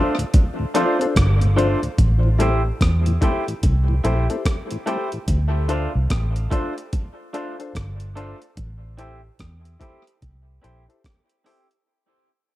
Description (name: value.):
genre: dub reggae.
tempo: 73 BPM.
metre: 4/4.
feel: swing 62% on 16ths.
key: unclear.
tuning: A4 = 440 Hz.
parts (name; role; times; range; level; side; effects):
electric guitar through a small old amp; accompaniment; 0.0-11.7 s; A3 to C5; -28 LUFS; right 2 dB; tape echo.
mellow tonewheel organ; accompaniment; 0.0-5.2 s; D2 to D4; -28 LUFS; left 1 dB; slow rotary speaker, tape echo.
clear upright piano; stabs; 0.0-11.6 s; D4 to C5; -27 LUFS; left 4 dB; tape echo.
breakbeat sampler-style drum kit; drums; 0.2-11.9 s; hi-hat, kick drum, rim click; -20 LUFS; equal; overdrive.
vintage muted fingered electric bass; bass; 1.2-10.9 s; G1 to E2; -20 LUFS; equal; none.
room: light reverb, digital ambience.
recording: dark, warm production.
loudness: -18 LUFS.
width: side -16 dB against mid.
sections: 0.0-11.9 A section.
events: fade-out 0.0-11.9.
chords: 0.0 Dm7; 2.0 Am7; 5.3 Dm7; 8.6 Am7.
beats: 0.34 1.16 | 1.99 2.81 3.63 4.46 | 5.28 6.10 6.92 7.75 | 8.57 9.39 10.22 11.04.